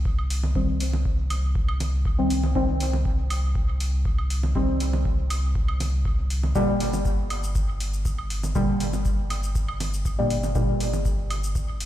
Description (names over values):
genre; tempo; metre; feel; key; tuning
dub techno; 120 BPM; 4/4; straight; C minor; A4 = 444 Hz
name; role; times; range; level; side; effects
soft dub sub bass; bass; 0.0-11.9 s; G1 to C2; -26 LUFS; equal; sidechain pumping
electronic kick drum; drums; 0.1-11.7 s; none; -27 LUFS; equal; none
woodblock and congas; percussion; 0.2-11.4 s; none; -36 LUFS; right 4 dB; sidechain pumping on perc, dub echo
electronic hi-hat and shaker; drums; 0.3-11.9 s; none; -36 LUFS; left 1 dB; none
deep mellow chord stab; stabs; 0.6-10.7 s; Bb2 to C4; -26 LUFS; left 1 dB; chorus, phaser, dub echo
room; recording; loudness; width
light reverb, digital ambience; played on a big sound system in a bare room, stone room reverb; -22 LUFS; side -13 dB against mid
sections
0.0-11.9 A section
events
none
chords
0.0 Cm; 6.6 Gm